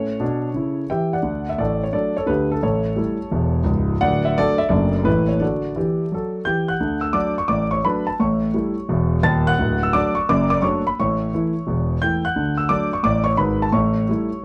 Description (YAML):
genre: jazz, stride piano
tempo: 173 BPM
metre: 4/4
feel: swing 62% on 8ths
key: D major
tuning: A4 = 440 Hz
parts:
  - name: warm concert grand piano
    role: solo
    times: 0.0-14.4 s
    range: C#1 to A6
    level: -20 LUFS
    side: equal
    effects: none
room: light reverb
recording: close, detailed microphones, vinyl crackle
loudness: -20 LUFS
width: mono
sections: 0.0-6.8 A section; 6.8-14.4 A section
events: none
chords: 0.0 A; 2.6 A7; 4.0 D; 4.7 D/F#; 5.1 A5; 5.4 D; 8.2 A7; 9.6 D; 10.3 D/F#; 11.0 A; 12.4 D; 13.7 A7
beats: 0.21 0.56 0.91 | 1.25 1.60 1.95 2.29 | 2.64 2.99 3.33 3.68 | 4.03 4.38 4.72 5.07 | 5.42 5.76 6.11 6.46 | 6.80 7.15 7.50 7.85 | 8.19 8.54 8.89 9.23 | 9.58 9.93 10.27 10.62 | 10.97 11.31 11.66 12.01 | 12.35 12.70 13.04 13.39 | 13.74 14.08 14.43